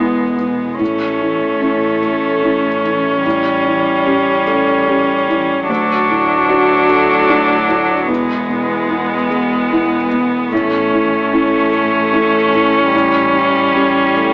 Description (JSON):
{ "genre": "neoclassical piano and strings", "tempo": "74 BPM", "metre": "3/4", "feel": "rubato", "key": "A major", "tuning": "A4 = 440 Hz", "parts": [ { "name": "muted cello", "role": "second line", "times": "0.0-14.3 s", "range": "F#3 to A3", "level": "-20 LUFS", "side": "equal", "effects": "none" }, { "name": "felt-muted upright piano", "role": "accompaniment", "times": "0.0-14.3 s", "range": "D2 to G4", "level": "-20 LUFS", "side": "equal", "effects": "none" }, { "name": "muted viola", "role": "accompaniment", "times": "0.0-14.3 s", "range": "B3 to D4", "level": "-18 LUFS", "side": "equal", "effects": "none" }, { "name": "muted double bass", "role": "bass", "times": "0.0-14.3 s", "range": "E1 to D2", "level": "-31 LUFS", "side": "equal", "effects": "none" } ], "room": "moderate recital hall reverb, RT60 1.5 s", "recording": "AM radio sound", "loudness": "-15 LUFS", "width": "mono", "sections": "0.0-14.3 A section", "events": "none", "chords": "0.0 E; 0.8 A; 3.2 A7; 5.7 D; 8.1 E; 10.5 A; 12.9 A7", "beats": "| 0.80 1.62 2.44 | 3.25 4.06 4.88 | 5.69 6.49 7.29 | 8.09 8.90 9.71 | 10.52 11.32 12.12 | 12.93 13.74" }